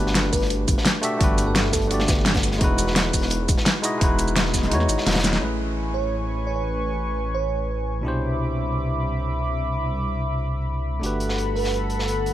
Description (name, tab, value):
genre	liquid drum and bass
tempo	171 BPM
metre	4/4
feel	straight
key	unclear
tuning	A4 = 440 Hz
part	barky tine electric piano	accompaniment	0.0-12.3 s	B2 to E5	-27 LUFS	equal	ping-pong delay
part	swelling detuned saw bass	bass	0.0-12.3 s	E1 to E2	-26 LUFS	equal	tube saturation
part	crunchy breakbeat drum kit	drums	0.1-5.4, 11.0-12.3 s	hi-hat, snare drum	-29 LUFS	equal	high-pass filter on hats, high-pass filter on snare, high-pass filter on room
part	pop drum kit	drums	0.2-5.4 s	hi-hat, shaker, snare drum	-24 LUFS	equal	none
part	bell-like FM electric piano	melody	0.3-2.2, 5.9-7.7, 11.6-11.8 s	A4 to C#5	-32 LUFS	right 4 dB	chorus, tremolo, digital delay
part	electronic kick drum	drums	0.3-4.6 s	none	-23 LUFS	equal	none
part	warm analog pad	sustained chords	5.4-12.3 s	A4 to D6	-29 LUFS	left 1 dB	chorus
room	digital ambience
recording	none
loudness	-20 LUFS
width	side -13 dB against mid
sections	0.0-5.4 A section; 5.4-12.3 B section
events	drop 0.0-5.4; kick drops out 4.7-5.4; drum fill 5.1-5.4; band accent 5.3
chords	0.0 Gmaj9; 2.6 Emaj9; 5.4 Amaj9; 8.0 Cmaj9; 11.0 Gmaj9